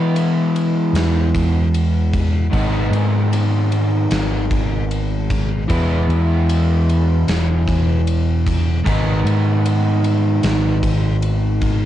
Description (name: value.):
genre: rock, shoegaze and dream pop.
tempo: 76 BPM.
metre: 4/4.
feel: straight.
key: E major.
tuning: A4 = 440 Hz.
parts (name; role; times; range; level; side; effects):
crunchy overdriven guitar; riff; 0.0-11.9 s; G#2 to E4; -20 LUFS; equal; lush chorus, cassette tape.
fingered electric bass; bass; 0.0-11.9 s; E1 to E3; -17 LUFS; equal; none.
gated 80s drum kit; drums; 0.2-11.8 s; kick drum, ride cymbal, snare drum; -25 LUFS; equal; none.
room: little or no reverb.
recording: home recording on cassette, nothing above 10.8 kHz.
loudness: -15 LUFS.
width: side -12 dB against mid.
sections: 0.0-11.9 A section.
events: none.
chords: 0.0 E; 2.5 G#m; 5.7 E; 8.8 G#m.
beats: 0.15 0.95 1.74 | 2.53 3.32 4.11 4.90 | 5.69 6.48 7.27 8.06 | 8.85 9.64 10.43 11.22.